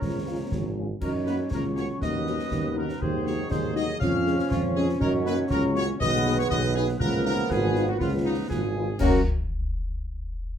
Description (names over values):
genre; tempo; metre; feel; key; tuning
military-style march for wind band; 120 BPM; 2/4; straight; F# major; A4 = 439 Hz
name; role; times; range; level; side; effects
warm trumpet section; melody; 0.0-9.2 s; D#4 to E#5; -34 LUFS; equal; none
clear euphonium; second line; 0.0-8.7 s; A#3 to E#4; -33 LUFS; right 2 dB; none
flute section; second line; 0.0-9.3 s; D#5 to E#6; -37 LUFS; left 3 dB; none
mellow woodwind section; second line; 0.0-9.2 s; E#4 to C#5; -36 LUFS; left 2 dB; none
dark trombone section; sustained chords; 0.0-9.2 s; E#3 to C#4; -32 LUFS; right 2 dB; none
warm tuba; bass; 0.0-9.2 s; G#1 to F#2; -27 LUFS; right 1 dB; none
concert snare drum, concert bass drum and clash cymbals; drums; 0.0-9.3 s; none; -30 LUFS; left 1 dB; none
dark French horn section; accompaniment; 0.3-9.2 s; G#3 to G#4; -31 LUFS; left 4 dB; none
room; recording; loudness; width
wet small room reverb, RT60 0.5 s; heard from further back in the room; -23 LUFS; side -9 dB against mid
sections
0.0-9.0 A section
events
none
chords
0.0 C#; 1.0 F#; 2.0 B/D#; 3.0 G#7/D#; 4.0 C#/E#; 5.0 F#; 6.0 G#m/B; 7.0 C#13; 9.0 F#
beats
| 0.01 0.51 | 1.01 1.51 | 2.01 2.51 | 3.01 3.51 | 4.01 4.51 | 5.01 5.51 | 6.01 6.51 | 7.01 7.50 | 8.01 8.51 | 9.00